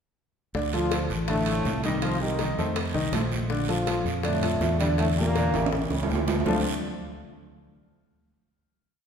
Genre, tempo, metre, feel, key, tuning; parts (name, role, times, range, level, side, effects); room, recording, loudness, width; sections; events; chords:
latin, salsa; 162 BPM; 4/4; straight; D minor; A4 = 440 Hz
clear grand piano; accompaniment; 0.5-6.6 s; C#3 to Eb5; -30 LUFS; left 1 dB
fingered electric bass; bass; 0.5-6.6 s; A1 to F2; -28 LUFS; equal
bongos; percussion; 0.5-6.5 s; -37 LUFS; left 6 dB
congas; percussion; 0.5-6.6 s; -37 LUFS; right 1 dB
guiro; percussion; 0.5-6.6 s; -39 LUFS; right 5 dB
brilliant trombone section; melody; 0.7-6.6 s; G2 to F4; -29 LUFS; equal
timbales; percussion; 0.7-6.5 s; -33 LUFS; right 5 dB
wet recital hall reverb, RT60 1.7 s; heard from further back in the room; -23 LUFS; side -7 dB against mid
0.5-6.5 verse; 6.5-7.9 final chord
drum fill 5.5-6.5
0.5 Dm7; 2.0 Cm7; 2.8 F7; 3.5 Bbmaj7; 5.0 Em7b5; 5.7 A7; 6.5 Dm7